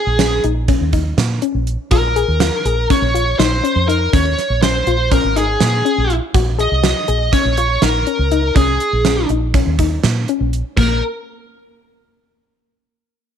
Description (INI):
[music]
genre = progressive instrumental, band music in an uneven meter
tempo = 244 BPM (eighths)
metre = 9/8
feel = straight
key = unclear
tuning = A4 = 441 Hz
[part]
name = high-gain lead guitar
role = melody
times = 0.0-11.0 s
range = Ab4 to Eb5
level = -18 LUFS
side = right 1 dB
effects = distortion, slapback echo
[part]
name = soft round pluck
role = arpeggios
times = 0.0-11.0 s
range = Bb3 to Ab4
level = -21 LUFS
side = left 12 dB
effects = chorus, slapback echo
[part]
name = deep dub fingered electric bass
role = bass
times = 0.1-11.0 s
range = Ab1 to Bb2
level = -18 LUFS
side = right 1 dB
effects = none
[part]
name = gated 80s drum kit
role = drums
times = 0.2-10.9 s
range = crash cymbal, hi-hat, kick drum, snare drum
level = -18 LUFS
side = right 4 dB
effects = none
[sound]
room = small room reverb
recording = 1960s-style stereo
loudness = -13 LUFS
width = side -8 dB against mid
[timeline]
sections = 0.0-10.8 A section; 10.8-13.0 B section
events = none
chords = 0.0 Gbsus2/Bb (rootless); 1.9 Bbm7; 6.3 Gbsus2/Bb; 10.8 N.C.